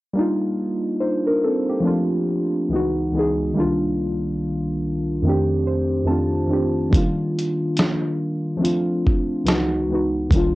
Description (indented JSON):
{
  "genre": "lo-fi hip hop",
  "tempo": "71 BPM",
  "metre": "4/4",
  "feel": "swing 58% on 16ths",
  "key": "unclear",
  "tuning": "A4 = 439 Hz",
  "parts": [
    { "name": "muted felt-like synth keys", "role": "accompaniment", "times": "0.1-10.6 s", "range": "C2 to A5", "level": "-19 LUFS", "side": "equal", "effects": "chorus, low-pass filter" },
    { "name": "dusty soul sampler-style drum kit", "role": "drums", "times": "6.9-10.5 s", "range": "hi-hat, kick drum, snare drum", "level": "-20 LUFS", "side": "equal", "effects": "vintage 12-bit sampler grit" }
  ],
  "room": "moderate booth ambience, RT60 0.3 s",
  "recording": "home recording on cassette",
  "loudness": "-19 LUFS",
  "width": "side -18 dB against mid",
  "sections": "0.2-10.6 A section",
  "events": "synth keys fill 5.2-6.9",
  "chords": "0.2 Ebmaj7; 1.9 Dm7; 2.7 Dbm11; 3.6 Cm11; 5.2 F13; 6.9 Ebmaj7; 8.6 Dm7; 9.5 Dbm11",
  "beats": "| 0.17 1.02 1.86 2.71 | 3.55 4.40 5.24 6.09 | 6.93 7.78 8.62 9.47 | 10.31"
}